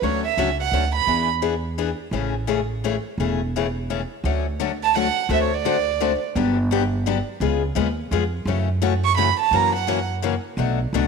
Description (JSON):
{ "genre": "acoustic string swing (jazz manouche)", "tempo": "170 BPM", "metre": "3/4", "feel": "swing 60% on 8ths", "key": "A major, D major from 4.2 s", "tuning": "A4 = 440 Hz", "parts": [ { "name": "warm violin", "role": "melody", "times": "0.0-1.3, 4.8-6.2, 9.0-10.1 s", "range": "C#5 to C#6", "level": "-21 LUFS", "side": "right 12 dB", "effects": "none" }, { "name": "picked steel-string acoustic guitar", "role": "accompaniment", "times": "0.0-11.0 s", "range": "B2 to A4", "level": "-24 LUFS", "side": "left 10 dB", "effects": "none" }, { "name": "upright bass", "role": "bass", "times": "0.0-11.1 s", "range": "E1 to F#2", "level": "-24 LUFS", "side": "right 2 dB", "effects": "none" } ], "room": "moderate echo chamber reverb, RT60 1.9 s, studio ambience", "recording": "1960s-style stereo with parts hard left and right", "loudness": "-20 LUFS", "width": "side -5 dB against mid", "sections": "0.0-4.2 A section; 4.2-11.1 B section", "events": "none", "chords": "0.0 Dmaj7; 1.1 E7; 2.1 Amaj7; 4.2 Dmaj7; 5.3 D7; 6.4 Gmaj7; 7.4 C#7; 8.5 F#m7; 9.5 F#7; 10.6 Bm7" }